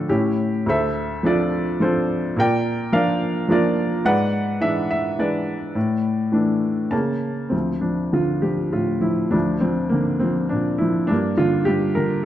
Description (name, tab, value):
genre	classical, lyrical solo piano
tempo	104 BPM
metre	3/4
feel	rubato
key	D minor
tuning	A4 = 439 Hz
part	clear upright piano	solo	0.0-12.2 s	D2 to A5	-19 LUFS	equal	none
room	moderate recital hall reverb, RT60 1.8 s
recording	dark, warm production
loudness	-19 LUFS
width	side -12 dB against mid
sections	0.0-7.5 A section; 7.5-12.2 B section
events	upright piano fill 6.6-7.5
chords	0.1 A; 0.7 Dm7; 2.4 Bb; 4.0 E7/G#; 5.8 Asus4; 6.9 N.C.; 7.5 Dm; 9.3 Bb/D; 11.1 Gm